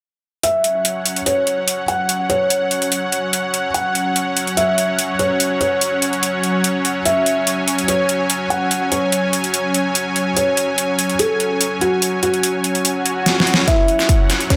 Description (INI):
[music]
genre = heavy wobble dubstep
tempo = 145 BPM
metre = 4/4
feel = half-time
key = unclear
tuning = A4 = 440 Hz
[part]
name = felt-muted upright piano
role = melody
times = 0.4-14.6 s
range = C#4 to F#5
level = -22 LUFS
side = equal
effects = low-pass filter, tape echo
[part]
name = supersaw pad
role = sustained chords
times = 0.4-14.6 s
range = F#3 to G#5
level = -23 LUFS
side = equal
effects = sidechain pumping
[part]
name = dubstep drum kit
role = drums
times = 0.4-14.6 s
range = hi-hat, shaker, snare drum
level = -21 LUFS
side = equal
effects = overdrive, high-pass filter on hats, high-pass filter on snare, high-pass filter on perc, high-pass filter on room
[part]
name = swell and riser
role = sound effects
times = 13.0-14.6 s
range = none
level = -28 LUFS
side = equal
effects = none
[part]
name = electronic kick drum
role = drums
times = 13.7-14.6 s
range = none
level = -18 LUFS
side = equal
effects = none
[sound]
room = moderate plate reverb, RT60 1.8 s, digital ambience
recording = none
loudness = -18 LUFS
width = mono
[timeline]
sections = 0.4-13.7 A section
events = swell 13.0-13.7; drum fill 13.3-13.7, 13.7-14.6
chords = 0.4 F#5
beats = | 0.43 0.85 1.26 1.68 | 2.09 2.50 2.92 3.33 | 3.75 4.16 4.57 4.99 | 5.40 5.81 6.23 6.64 | 7.05 7.47 7.88 8.30 | 8.71 9.12 9.54 9.95 | 10.37 10.78 11.19 11.61 | 12.02 12.44 12.85 13.26 | 13.68 14.09 14.50